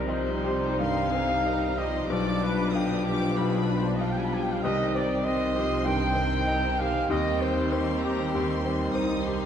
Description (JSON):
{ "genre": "classical, romantic movement for piano and orchestra", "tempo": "81-101 BPM", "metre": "4/4", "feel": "rubato", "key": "C minor", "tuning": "A4 = 440 Hz", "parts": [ { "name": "clear baby grand piano", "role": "melody", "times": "0.0-9.5 s", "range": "B1 to F5", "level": "-30 LUFS", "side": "left 4 dB", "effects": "none" }, { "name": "rich studio violin section", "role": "second line", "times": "0.0-9.5 s", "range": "C4 to C5", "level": "-37 LUFS", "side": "left 2 dB", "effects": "none" }, { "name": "silver concert flute", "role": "second line", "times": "0.0-9.2 s", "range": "G4 to B5", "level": "-37 LUFS", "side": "left 2 dB", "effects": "none" }, { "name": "warm clarinet", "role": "second line", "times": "0.0-9.5 s", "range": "C4 to Eb4", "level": "-38 LUFS", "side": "left 1 dB", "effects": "none" }, { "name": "dark bassoon", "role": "accompaniment", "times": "0.0-9.5 s", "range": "Eb3 to G3", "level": "-37 LUFS", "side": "right 2 dB", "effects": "none" }, { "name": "rich chamber viola section", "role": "accompaniment", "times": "0.0-9.5 s", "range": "D3 to Eb4", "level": "-35 LUFS", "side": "equal", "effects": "none" }, { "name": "dark French horn section", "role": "sustained chords", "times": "0.0-9.4 s", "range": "C4 to F4", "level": "-33 LUFS", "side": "left 2 dB", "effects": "none" }, { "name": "warm trumpet section", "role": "stabs", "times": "0.0-9.2 s", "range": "G4 to B5", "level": "-31 LUFS", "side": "right 1 dB", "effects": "none" }, { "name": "clear chamber double bass section", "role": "bass", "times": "0.0-9.5 s", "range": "B1 to Eb2", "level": "-33 LUFS", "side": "right 3 dB", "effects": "none" }, { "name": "warm chamber cello section", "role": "bass", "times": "0.0-9.5 s", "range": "C2 to C3", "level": "-36 LUFS", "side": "right 4 dB", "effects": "none" }, { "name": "rich chamber violin section", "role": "melody", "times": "0.8-9.5 s", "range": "G5 to Eb6", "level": "-39 LUFS", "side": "left 1 dB", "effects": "none" } ], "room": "wet scoring stage reverb, RT60 1.7 s", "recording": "dark, warm production", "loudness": "-24 LUFS", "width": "side -8 dB against mid", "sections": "0.0-9.5 A section", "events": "none", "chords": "0.0 Cm; 2.1 G7/B; 4.6 Cm; 7.1 Cm/Eb", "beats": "0.08 0.80 1.45 | 2.10 2.75 3.37 4.01 | 4.63 5.25 5.86 6.47 | 7.10 7.71 8.34 8.94" }